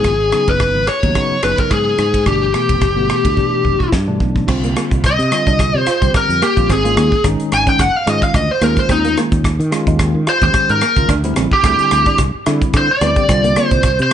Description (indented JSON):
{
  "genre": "electric jazz fusion",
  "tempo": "109 BPM",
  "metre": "4/4",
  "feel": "swing 55% on 16ths",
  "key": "unclear",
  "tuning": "A4 = 440 Hz",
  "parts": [
    { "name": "bluesy overdriven lead guitar", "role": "melody", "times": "0.0-14.1 s", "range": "Eb4 to Ab5", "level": "-15 LUFS", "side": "left 1 dB", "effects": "distortion" },
    { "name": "bell-like tine electric piano", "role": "accompaniment", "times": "0.0-13.9 s", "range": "B2 to G4", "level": "-21 LUFS", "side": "equal", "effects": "medium stereo tremolo" },
    { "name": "fretless electric bass", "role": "bass", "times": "0.0-14.1 s", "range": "F1 to Eb3", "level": "-18 LUFS", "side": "equal", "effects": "none" },
    { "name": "modern studio drum kit", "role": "drums", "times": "0.0-14.1 s", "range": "crash cymbal, hi-hat, kick drum, ride cymbal, rim click, snare drum", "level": "-19 LUFS", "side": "equal", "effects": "none" },
    { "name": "semi-hollow electric guitar", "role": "stabs", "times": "4.5-13.8 s", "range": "Bb3 to F4", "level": "-23 LUFS", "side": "right 5 dB", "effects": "lush chorus" }
  ],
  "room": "light reverb, small room ambience",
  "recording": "nothing above 10.3 kHz",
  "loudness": "-12 LUFS",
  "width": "side -9 dB against mid",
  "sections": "0.0-4.5 A section; 4.5-14.1 B section",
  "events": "drum fill 3.4-4.5; lead electric guitar solo 4.5-14.1",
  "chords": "0.0 Abm7; 2.3 G7; 4.5 C9sus4; 6.7 Absus4; 8.6 Eb9sus4; 11.1 D9sus4; 13.3 C9sus4"
}